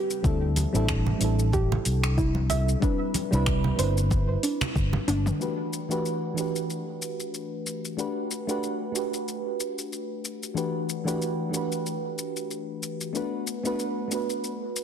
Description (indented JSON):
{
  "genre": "sunset chillout",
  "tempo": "93 BPM",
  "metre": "4/4",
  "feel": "swing 56% on 16ths",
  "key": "E minor",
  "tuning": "A4 = 435 Hz",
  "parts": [
    { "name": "mellow FM electric piano", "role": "accompaniment", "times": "0.0-14.8 s", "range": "E3 to B4", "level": "-29 LUFS", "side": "moving between left 6 dB and right 6 dB", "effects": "chorus, auto-pan, digital delay" },
    { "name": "soft round pluck", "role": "arpeggios", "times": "0.0-5.4 s", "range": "D4 to E5", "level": "-32 LUFS", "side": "right 4 dB", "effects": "chorus, digital delay" },
    { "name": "deep house drum kit", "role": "drums", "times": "0.1-14.8 s", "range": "finger snaps, hi-hat, shaker, toms", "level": "-32 LUFS", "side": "left 3 dB", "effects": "overdrive, soft clipping on snare" },
    { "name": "fretless electric bass", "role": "bass", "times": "0.2-5.3 s", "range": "G1 to D2", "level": "-25 LUFS", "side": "left 1 dB", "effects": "none" },
    { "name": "electronic kick drum", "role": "drums", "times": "0.2-4.9 s", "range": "none", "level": "-27 LUFS", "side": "left 1 dB", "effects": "overdrive" },
    { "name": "congas", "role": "percussion", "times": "0.6-5.0 s", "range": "none", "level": "-32 LUFS", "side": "right 4 dB", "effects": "none" }
  ],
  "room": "light reverb, digital ambience",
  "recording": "dense, heavily limited modern master",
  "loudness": "-25 LUFS",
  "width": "side -8 dB against mid",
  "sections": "0.0-5.4 A section; 5.4-14.8 B section",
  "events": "filter sweep on synth arpeggio sound 0.0-5.4; drum fill 5.1-5.4",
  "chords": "0.2 D9sus4; 2.8 Cmaj9; 5.4 Em11; 8.0 Gmaj7; 10.6 Em11; 13.1 Bm7",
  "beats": "| 0.24 0.89 1.53 2.18 | 2.82 3.47 4.11 4.76 | 5.40 6.05 6.69 7.34 | 7.98 8.63 9.27 9.92 | 10.56 11.21 11.85 12.50 | 13.14 13.79 14.43"
}